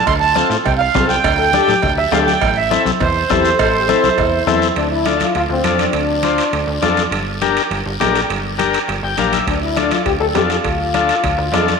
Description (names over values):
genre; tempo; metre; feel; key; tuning
latin, cumbia; 204 BPM; 4/4; straight; D minor; A4 = 441 Hz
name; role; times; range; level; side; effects
accordion; melody; 0.0-4.4 s; C5 to C6; -17 LUFS; right 7 dB; none
plucky analog bass; bass; 0.1-11.8 s; G1 to A2; -23 LUFS; right 2 dB; none
bombo; percussion; 0.1-4.6, 9.5-11.7 s; none; -26 LUFS; left 1 dB; none
cowbell and timbales; percussion; 0.1-11.8 s; none; -23 LUFS; right 11 dB; none
guiro; percussion; 0.1-11.8 s; none; -28 LUFS; left 8 dB; none
congas; percussion; 0.2-11.8 s; none; -26 LUFS; left 6 dB; none
combo organ; accompaniment; 0.4-11.7 s; C4 to G5; -19 LUFS; left 6 dB; none
warm trombone; second line; 1.4-6.9, 9.5-11.6 s; C4 to A4; -20 LUFS; left 3 dB; none
room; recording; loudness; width
wet echo chamber reverb, RT60 2.0 s; 1960s-style stereo with parts hard left and right; -13 LUFS; side -5 dB against mid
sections
0.0-4.8 A section; 4.8-11.8 B section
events
trombone solo 4.8-11.8; transistor combo organ fill 8.9-9.5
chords
0.1 F/D; 1.2 Gsus2/D; 2.4 Am; 4.8 Dm; 7.1 Gm; 9.5 Dm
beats
| 0.07 0.36 0.66 0.95 | 1.24 1.54 1.83 2.12 | 2.42 2.71 3.00 3.30 | 3.59 3.88 4.18 4.47 | 4.76 5.06 5.35 5.65 | 5.94 6.24 6.53 6.82 | 7.12 7.41 7.71 8.00 | 8.30 8.59 8.88 9.18 | 9.47 9.77 10.06 10.36 | 10.65 10.95 11.24 11.53